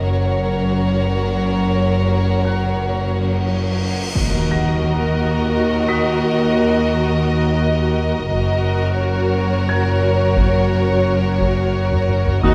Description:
cinematic, suspense film score; 87 BPM; 3/4; straight; A4 = 443 Hz
warm studio violin section; melody; 0.0-12.5 s; Db5 to Eb5; -26 LUFS; equal
rich studio violin section; second line; 0.0-12.5 s; Eb4 to Bb4; -28 LUFS; equal
rich studio cello section; bass; 0.0-12.5 s; Eb2 to Gb2; -23 LUFS; equal
rich studio double bass section; bass; 0.0-12.5 s; Gb1 to Eb2; -23 LUFS; equal
dark baby grand piano; texture; 0.0-12.5 s; Eb5 to Cb7; -34 LUFS; equal
cymbal swell and impact; sound effects; 3.3-6.2 s; -27 LUFS; equal
clear studio viola section; accompaniment; 4.1-12.5 s; Gb4; -26 LUFS; equal
taiko ensemble; drums; 4.2-12.5 s; -25 LUFS; equal
light reverb; vinyl crackle; -18 LUFS; mono
0.0-4.2 A section; 4.2-12.5 A section
cymbal swell 3.3-4.2; impact 4.2-6.2; drum fill 11.9-12.4
0.0 Gb; 4.2 Ebm; 8.3 Gb
| 0.02 0.71 1.40 | 2.09 2.78 3.47 | 4.16 4.85 5.54 | 6.23 6.92 7.61 | 8.30 8.99 9.68 | 10.37 11.06 11.75 | 12.44

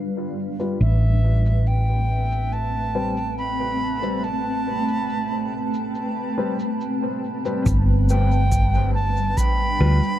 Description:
ambient dub; 70 BPM; 4/4; straight; A minor; A4 = 440 Hz
granular cloud pad; sustained chords; 0.0-10.2 s; G3 to G5; -27 LUFS; equal; built-in reverb
hollow-body short-scale fingered electric bass; bass; 0.0-10.0 s; G1 to D2; -19 LUFS; equal
warm upright piano; stabs; 0.6-10.0 s; G3 to B4; -31 LUFS; left 3 dB; low-pass filter, dub echo
cabasa; drums; 0.6-9.6 s; -42 LUFS; right 1 dB; low-pass filter on perc, low-pass filter on room, dub echo
bright reedy wooden flute; melody; 0.8-10.2 s; E5 to B5; -27 LUFS; right 2 dB; dub echo
electronic kick drum; drums; 7.7-9.5 s; -24 LUFS; equal
light reverb; dark, warm production; -19 LUFS; side -12 dB against mid
0.0-7.7 A section; 7.7-10.2 B section
0.0 G7; 0.8 Am9; 7.7 G7
| 0.81 1.66 2.52 3.38 | 4.23 5.09 5.95 6.80 | 7.66 8.52 9.38

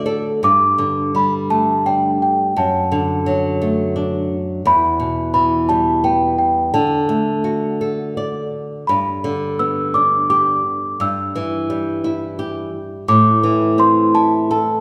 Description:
children's music, lullaby; 85 BPM; 3/4; rubato; G major; A4 = 439 Hz
flamenco guitar; accompaniment; 0.0-14.8 s; E2 to D5; -21 LUFS; equal
celesta; melody; 0.4-14.8 s; G5 to E6; -19 LUFS; equal
wet recital hall reverb, RT60 1.7 s; recorded in a church or concert hall; -17 LUFS; mono
0.4-14.8 A section
nylon-string guitar fill 0.0-0.4
0.4 Gsus2; 2.6 D/F#; 4.7 Em; 6.7 D; 8.9 G; 11.0 Em/G; 13.1 Am
| 0.43 1.15 1.86 | 2.56 3.27 3.96 | 4.65 5.34 6.04 | 6.74 7.45 8.17 | 8.88 9.60 10.30 | 11.00 11.70 12.39 | 13.08 13.79 14.50

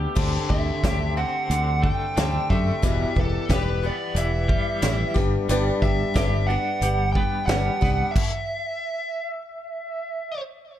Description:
folk rock and heartland rock; 90 BPM; 4/4; straight; G major; A4 = 443 Hz
picked swing-style acoustic guitar; accompaniment; 0.0-8.2 s; E2 to G4; -30 LUFS; left 6 dB
twelve-string electric guitar; riff; 0.0-8.2 s; E2 to G4; -30 LUFS; left 1 dB; tremolo
fingered electric bass; bass; 0.0-8.0 s; E1 to F#2; -25 LUFS; equal
natural country drum kit; drums; 0.2-8.3 s; crash cymbal, hi-hat, kick drum, snare drum; -25 LUFS; equal
biting lead guitar; melody; 0.5-10.4 s; A4 to G5; -28 LUFS; right 2 dB; overdrive, tape echo
dark upright piano; accompaniment; 5.5-8.1 s; G4 to D5; -32 LUFS; right 3 dB
light reverb; dark, warm production; -21 LUFS; side -12 dB against mid
0.2-10.8 A section
stop 8.2-10.8
0.2 D7sus4; 2.8 Em; 5.2 G; 8.2 N.C.
| 0.16 0.83 1.50 2.16 | 2.83 3.50 4.16 4.83 | 5.49 6.16 6.82 7.49 | 8.15 8.82 9.48 10.15

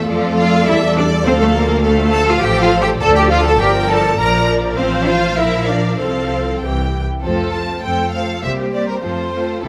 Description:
quick classical-period movement for string orchestra; 101 BPM; 2/4; rubato; F major; A4 = 440 Hz
warm symphonic violin section; melody; 0.0-9.7 s; A4 to A5; -25 LUFS; equal
warm symphonic violin section; second line; 0.0-9.7 s; C4 to Bb5; -24 LUFS; equal
rich symphonic viola section; accompaniment; 0.0-9.7 s; E3 to C5; -22 LUFS; equal
rich symphonic cello section; bass; 0.0-9.7 s; F3 to Bb4; -21 LUFS; equal
rich symphonic double bass section; bass; 0.0-9.7 s; G1 to F2; -22 LUFS; equal
moderate scoring stage reverb, RT60 1.5 s; -16 LUFS; mono
0.0-7.2 A section; 7.2-9.7 B section
0.1 Dm/F; 1.3 Dm; 2.4 F/A; 3.0 Dm; 3.6 Gm7; 4.8 F/A; 5.4 Bb; 6.0 F/C; 6.6 C; 7.2 F; 8.4 C7(no3); 9.0 F
| 0.08 0.67 | 1.26 1.85 | 2.42 3.01 | 3.60 4.19 | 4.78 5.38 | 6.00 6.62 | 7.24 7.84 | 8.44 9.03 | 9.64

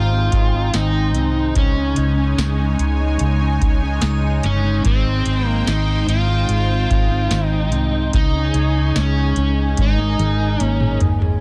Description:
dream pop; 73 BPM; 4/4; straight; Ab major; A4 = 440 Hz
overdriven slide guitar; melody; 0.0-11.0 s; C4 to F4; -25 LUFS; equal; digital delay
lush unison pad; sustained chords; 0.0-11.4 s; Ab3 to Ab5; -29 LUFS; equal; chorus, phaser
mellow electric guitar; arpeggios; 0.0-11.4 s; Ab2 to Ab4; -26 LUFS; equal; analog chorus, digital delay
vintage muted fingered electric bass; bass; 0.0-11.4 s; G1 to Db2; -22 LUFS; equal
glassy synth bell; texture; 0.0-5.2 s; G5 to Eb6; -42 LUFS; equal
booming analog drum machine; drums; 0.3-11.4 s; hi-hat, kick drum, snare drum, tambourine, toms; -21 LUFS; equal
light reverb; dense, heavily limited modern master; -18 LUFS; mono
0.0-11.4 A section
drum fill 9.8-11.4
0.0 Abmaj7; 1.6 Dbsus2; 4.9 Abmaj7; 8.1 Dbsus2; 9.8 Absus2
0.74 | 1.56 2.39 3.21 4.03 | 4.85 5.67 6.50 7.32 | 8.14 8.96 9.78 10.61

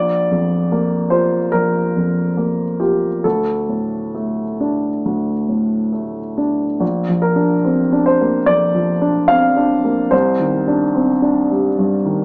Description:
neoclassical minimalist piano; 65-74 BPM; 4/4; rubato; A4 = 440 Hz
warm baby grand piano; solo; 0.0-12.2 s; Bb1 to F5; -14 LUFS; equal
moderate studio reverb, RT60 0.7 s; small speaker sound; -14 LUFS; side -35 dB against mid
0.0-6.8 A section; 6.8-12.2 B section
0.0 Bb69; 3.2 D5; 6.8 Bb; 10.1 Cmadd9
0.70 1.53 2.36 | 3.24 4.16 5.05 5.93 | 6.82 7.66 8.48 9.30 | 10.12 10.96 11.78

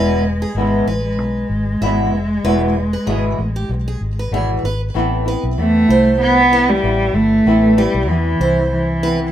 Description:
acoustic pop; 96 BPM; 4/4; swing 55% on 16ths; A minor; A4 = 440 Hz
dark cello; melody; 0.0-9.3 s; E3 to B3; -16 LUFS; equal; digital delay
nylon-string guitar; accompaniment; 0.0-9.3 s; E2 to E4; -21 LUFS; left 1 dB; double-tracked left and right
picked steel-string acoustic guitar; arpeggios; 0.0-9.2 s; G4 to E5; -23 LUFS; right 3 dB; digital delay
vintage muted fingered electric bass; bass; 0.0-9.3 s; E1 to E2; -20 LUFS; equal
wet studio ambience, RT60 0.5 s; rough home demo mix; -14 LUFS; side -11 dB against mid
0.0-5.0 A section; 5.0-9.3 B section
0.0 E; 5.0 Amadd9
0.56 1.18 1.81 | 2.44 3.07 3.70 4.32 | 4.95 5.58 6.21 6.83 | 7.46 8.08 8.71

